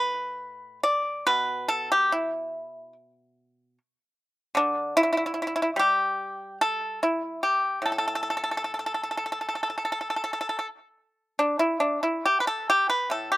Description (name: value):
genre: chinese traditional, Chinese solo plucked strings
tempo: 63-75 BPM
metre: 4/4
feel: rubato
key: A shang mode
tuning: A4 = 440 Hz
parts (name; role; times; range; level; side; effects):
- pipa; solo; 0.0-13.4 s; A2 to D5; -24 LUFS; equal; none
room: little or no reverb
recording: recorded outdoors, with no room sound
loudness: -24 LUFS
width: side -16 dB against mid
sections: 0.0-11.3 A section; 11.3-13.4 B section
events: none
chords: none